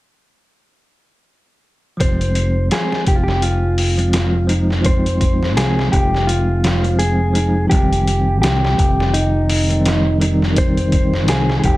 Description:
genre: trip hop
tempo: 84 BPM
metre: 4/4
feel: swing 58% on 16ths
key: F minor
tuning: A4 = 440 Hz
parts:
  - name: mellow electric guitar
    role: melody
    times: 2.0-11.8 s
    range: Eb4 to C5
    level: -21 LUFS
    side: equal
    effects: spring reverb, tape echo
  - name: bell-like tine electric piano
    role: accompaniment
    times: 2.0-11.8 s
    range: Eb3 to Eb4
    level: -20 LUFS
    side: equal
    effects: tremolo, tape echo
  - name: fingered electric bass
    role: bass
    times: 2.0-11.8 s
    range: F1 to C2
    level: -18 LUFS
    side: equal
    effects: none
  - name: trip hop sampler-style drum kit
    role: drums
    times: 2.0-11.8 s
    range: hi-hat, kick drum, snare drum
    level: -19 LUFS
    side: equal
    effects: none
room: little or no reverb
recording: none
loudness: -14 LUFS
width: side -18 dB against mid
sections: 2.0-11.8 A section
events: none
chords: 2.0 Fm; 7.7 Cm/F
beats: | 2.00 2.71 3.42 4.14 | 4.85 5.57 6.28 7.00 | 7.71 8.42 9.14 9.85 | 10.57 11.28

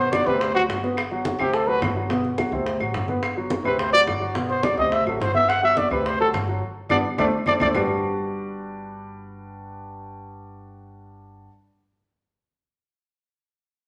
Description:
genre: Afro-Cuban jazz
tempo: 212 BPM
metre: 4/4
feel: straight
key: G major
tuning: A4 = 441 Hz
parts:
  - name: breathy trumpet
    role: melody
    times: 0.0-7.7 s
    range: F#4 to F#5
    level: -23 LUFS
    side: equal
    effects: none
  - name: warm concert grand piano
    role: accompaniment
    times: 0.0-11.5 s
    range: B2 to D5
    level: -29 LUFS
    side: equal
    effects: none
  - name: upright bass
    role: bass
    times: 0.0-11.5 s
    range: G1 to D2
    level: -35 LUFS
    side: equal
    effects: none
  - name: bongos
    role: percussion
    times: 0.1-7.8 s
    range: none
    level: -35 LUFS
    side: equal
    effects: none
  - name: claves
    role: percussion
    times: 0.1-7.8 s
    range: none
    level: -35 LUFS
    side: equal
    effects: none
  - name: congas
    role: percussion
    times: 0.1-7.8 s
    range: none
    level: -35 LUFS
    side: equal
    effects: none
room: wet large studio reverb, RT60 1.2 s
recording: none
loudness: -22 LUFS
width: mono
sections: 0.0-7.7 A section; 7.7-10.0 B section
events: trumpet solo 0.0-7.7; band accent 6.6-7.7; drum fill 7.0-7.7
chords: 0.0 Gmaj7; 1.5 D7; 2.1 Gmaj7; 2.7 D7; 3.2 Gmaj7; 3.8 D7; 4.4 Gmaj7; 4.9 D7; 5.5 Gmaj7; 6.1 D7; 6.6 G; 7.2 D5; 7.7 Gmaj7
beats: 0.12 0.40 0.69 | 0.97 1.25 1.53 1.82 | 2.10 2.38 2.66 2.94 | 3.23 3.51 3.79 4.08 | 4.36 4.64 4.92 5.20 | 5.49 5.77 6.05 6.33 | 6.62 6.90 7.18 7.46 | 7.75 8.03 8.31 8.60 | 8.88 9.16 9.44 9.73

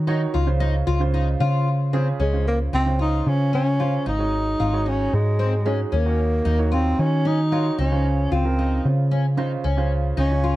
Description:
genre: progressive instrumental, progressive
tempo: 226 BPM (eighths)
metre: 7/8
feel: straight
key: Db major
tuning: A4 = 440 Hz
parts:
  - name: warm grand piano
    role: accompaniment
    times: 0.0-10.6 s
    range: Db3 to Db5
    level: -28 LUFS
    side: right 5 dB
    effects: none
  - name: hollow-body short-scale picked electric bass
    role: bass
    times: 0.0-10.6 s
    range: Ab1 to Eb3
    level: -21 LUFS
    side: equal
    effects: none
  - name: fingerpicked twelve-string acoustic guitar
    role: arpeggios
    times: 0.1-10.6 s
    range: C4 to F4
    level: -29 LUFS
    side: left 5 dB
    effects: ping-pong delay
  - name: breathy tenor saxophone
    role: melody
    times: 2.2-10.6 s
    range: Ab3 to Eb4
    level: -23 LUFS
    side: equal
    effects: none
room: light reverb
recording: dark, warm production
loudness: -19 LUFS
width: side -16 dB against mid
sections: 0.0-2.2 A section; 2.2-10.6 B section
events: none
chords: 0.3 Dbmaj7; 4.1 Ab7sus4; 5.9 Ebm7; 7.8 Dbmaj7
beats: 0.07 | 0.34 0.61 0.87 1.14 1.41 1.67 1.94 | 2.21 2.47 2.74 3.00 3.27 3.54 3.80 | 4.07 4.33 4.60 4.87 5.13 5.40 5.66 | 5.93 6.20 6.46 6.73 6.99 7.26 7.52 | 7.79 8.05 8.32 8.59 8.85 9.12 9.38 | 9.65 9.91 10.18 10.44

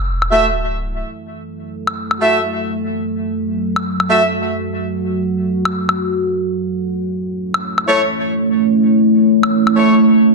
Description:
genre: bass house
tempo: 127 BPM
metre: 4/4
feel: swing 61% on 16ths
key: F# minor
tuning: A4 = 440 Hz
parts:
  - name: deep dark ambient pad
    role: sustained chords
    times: 0.9-10.3 s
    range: F#3 to C#5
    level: -16 LUFS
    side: right 1 dB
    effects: chorus, built-in reverb
  - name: sub drop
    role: sound effects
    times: 0.0-1.0 s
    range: none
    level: -22 LUFS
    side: equal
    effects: none
  - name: woodblock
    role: drums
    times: 0.2-9.7 s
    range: none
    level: -19 LUFS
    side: left 2 dB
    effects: none
  - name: warm horn section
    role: stabs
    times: 0.3-4.2, 7.9-10.0 s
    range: A3 to E5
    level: -16 LUFS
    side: equal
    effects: tape echo
room: wet digital room reverb, RT60 1.3 s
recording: dense, heavily limited modern master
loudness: -14 LUFS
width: side -2 dB against mid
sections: 0.0-10.3 A section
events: impact 0.0-1.0; filter sweep on ambient pad 0.0-10.3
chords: 0.0 F#m7; 6.7 A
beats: 0.08 0.55 | 1.02 1.49 1.97 2.44 | 2.91 3.38 3.85 4.33 | 4.80 5.27 5.75 6.22 | 6.69 7.16 7.63 8.11 | 8.58 9.05 9.53 10.00

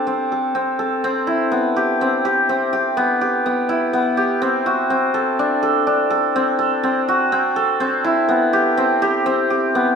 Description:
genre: contemporary instrumental, contemporary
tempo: 124 BPM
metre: 7/4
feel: straight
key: unclear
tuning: A4 = 442 Hz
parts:
  - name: hammered dulcimer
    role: solo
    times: 0.0-10.0 s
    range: B3 to A4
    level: -16 LUFS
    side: equal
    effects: none
room: wet recital hall reverb, RT60 1.3 s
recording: none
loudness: -16 LUFS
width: side -6 dB against mid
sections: 0.0-1.0 A section; 1.0-10.0 A section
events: none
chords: 0.0 D5; 1.0 Cmaj7; 4.4 D7; 7.8 Cmaj7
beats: 0.06 0.55 | 1.03 1.51 2.00 2.48 2.97 3.45 3.94 | 4.42 4.90 5.39 5.87 6.35 6.84 7.32 | 7.81 8.29 8.77 9.26 9.74

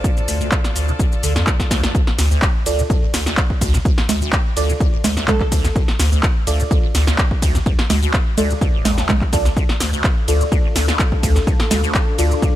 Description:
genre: acid house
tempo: 126 BPM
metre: 4/4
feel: straight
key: D minor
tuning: A4 = 440 Hz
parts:
  - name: dark analog pad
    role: sustained chords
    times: 0.0-1.9, 10.3-12.6 s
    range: D4 to F5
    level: -29 LUFS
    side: left 4 dB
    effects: chorus, sidechain pumping
  - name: liquid acid bass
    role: riff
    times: 0.0-12.5 s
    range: D1 to F3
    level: -24 LUFS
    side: equal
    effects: phaser, tube saturation, wide subtle chorus, ping-pong delay
  - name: electronic kick drum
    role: drums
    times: 0.0-12.5 s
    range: none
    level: -17 LUFS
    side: equal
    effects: none
  - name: punchy analog drum machine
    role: drums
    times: 0.0-12.5 s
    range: congas, handclaps, hi-hat, ride cymbal, shaker, snare drum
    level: -21 LUFS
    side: right 1 dB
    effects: none
  - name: clear chamber string section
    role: texture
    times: 0.0-1.9 s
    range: F4 to A5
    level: -30 LUFS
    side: equal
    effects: sidechain pumping
  - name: warm sub bass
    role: bass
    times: 0.3-12.3 s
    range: A1 to D2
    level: -19 LUFS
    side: equal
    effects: tube saturation, sidechain pumping
  - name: deep mellow chord stab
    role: stabs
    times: 2.7-12.6 s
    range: F4 to D5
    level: -25 LUFS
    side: right 1 dB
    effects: chorus, phaser, ping-pong delay
  - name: glassy wavetable pluck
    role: melody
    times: 5.3-5.5 s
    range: A4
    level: -26 LUFS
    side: right 2 dB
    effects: chorus, ping-pong delay
room: little or no reverb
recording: none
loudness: -15 LUFS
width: side -13 dB against mid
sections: 0.0-1.9 A section; 1.9-12.6 B section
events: drum fill 1.6-1.9; drop 1.9-12.6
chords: 0.0 Dm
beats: | 0.04 0.52 0.99 1.47 | 1.95 2.42 2.90 3.38 | 3.85 4.33 4.80 5.28 | 5.76 6.23 6.71 7.18 | 7.66 8.14 8.61 9.09 | 9.57 10.04 10.52 10.99 | 11.47 11.95 12.42

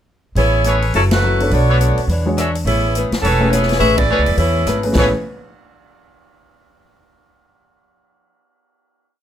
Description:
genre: jazz, big band swing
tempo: 209 BPM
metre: 4/4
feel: swing 60% on 8ths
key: A major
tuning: A4 = 441 Hz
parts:
  - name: mellow saxophone section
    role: melody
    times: 0.4-5.1 s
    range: E3 to E5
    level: -18 LUFS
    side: right 1 dB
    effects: none
  - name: picked old ladder-braced acoustic guitar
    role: accompaniment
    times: 0.4-5.1 s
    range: E3 to C#5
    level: -24 LUFS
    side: left 3 dB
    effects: none
  - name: upright bass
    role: bass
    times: 0.4-5.1 s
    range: E1 to E2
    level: -17 LUFS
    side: equal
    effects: none
  - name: swinging big-band drum kit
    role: drums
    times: 0.4-5.0 s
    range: crash cymbal, hi-hat, kick drum, ride cymbal, rim click, snare drum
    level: -23 LUFS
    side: equal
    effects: none
  - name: brilliant trumpet section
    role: stabs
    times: 0.7-5.1 s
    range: D4 to E5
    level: -22 LUFS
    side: left 1 dB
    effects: none
  - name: warm grand piano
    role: accompaniment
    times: 1.4-5.1 s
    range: G#3 to C#5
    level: -21 LUFS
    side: left 1 dB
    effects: none
room: light reverb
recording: close, detailed microphones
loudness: -13 LUFS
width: side -10 dB against mid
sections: 0.4-4.9 A section; 4.9-6.1 final chord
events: band accent 1.1, 3.9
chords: 0.4 Amaj9; 0.9 F#m7; 1.5 Bm9; 2.1 E13; 2.7 Amaj9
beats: | 0.36 0.65 0.94 1.23 | 1.51 1.80 2.09 2.37 | 2.66 2.95 3.23 3.52 | 3.81 4.09 4.38 4.66 | 4.95

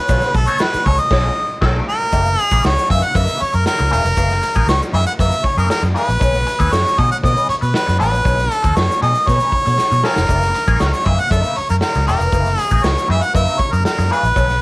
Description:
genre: funk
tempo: 118 BPM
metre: 4/4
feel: straight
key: F# mixolydian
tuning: A4 = 435 Hz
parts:
  - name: clear harmonica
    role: melody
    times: 0.0-14.6 s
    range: A4 to F#5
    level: -17 LUFS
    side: equal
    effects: cassette tape
  - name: semi-hollow electric guitar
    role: accompaniment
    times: 0.0-14.5 s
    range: E3 to B4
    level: -24 LUFS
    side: left 3 dB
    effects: wah, ensemble chorus
  - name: warm horn section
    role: second line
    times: 0.1-1.8, 9.3-10.2 s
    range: F#4 to C#5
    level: -26 LUFS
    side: right 2 dB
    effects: none
  - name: vintage muted fingered electric bass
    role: bass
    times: 0.1-14.6 s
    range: E1 to B2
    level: -17 LUFS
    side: equal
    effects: none
  - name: raw garage drum kit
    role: drums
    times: 0.1-14.6 s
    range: crash cymbal, hi-hat, kick drum, snare drum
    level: -20 LUFS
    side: equal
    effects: cassette tape
  - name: tube shaker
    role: percussion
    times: 0.1-14.6 s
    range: none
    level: -40 LUFS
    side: left 3 dB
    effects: none
room: light reverb, small room reverb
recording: home recording on cassette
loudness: -13 LUFS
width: side -22 dB against mid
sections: 0.0-2.1 A section; 2.1-14.6 B section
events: band accent 1.1-2.1, 8.3-10.3; drum fill 9.8-10.3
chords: 0.0 B9; 2.1 F#13; 6.2 B9; 10.3 F#13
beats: | 0.10 0.60 1.11 1.62 | 2.13 2.64 3.15 3.66 | 4.17 4.68 5.19 5.70 | 6.21 6.72 7.23 7.74 | 8.25 8.76 9.27 9.78 | 10.29 10.80 11.31 11.82 | 12.33 12.84 13.35 13.86 | 14.37

